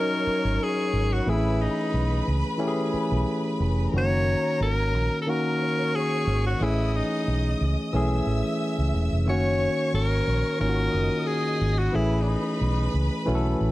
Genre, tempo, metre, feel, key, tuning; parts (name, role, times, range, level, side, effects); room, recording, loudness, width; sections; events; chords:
lush 1970s-style soul; 90 BPM; 4/4; swing 54% on 16ths; F# major; A4 = 440 Hz
edgy alto saxophone; melody; 0.0-12.9 s; D4 to C#5; -28 LUFS; left 1 dB
clear studio string section; second line; 0.0-13.7 s; A#4 to E6; -35 LUFS; right 1 dB
barky tine electric piano; accompaniment; 0.0-13.7 s; D#3 to A#4; -26 LUFS; left 1 dB
vintage muted fingered electric bass; bass; 0.3-13.7 s; E1 to C#2; -25 LUFS; equal
light reverb, small room ambience; -22 LUFS; side -17 dB against mid
0.0-13.7 A section
0.0 F#6; 1.3 Amaj7; 3.9 F#6; 6.6 Amaj7; 9.3 F#6; 11.9 Amaj7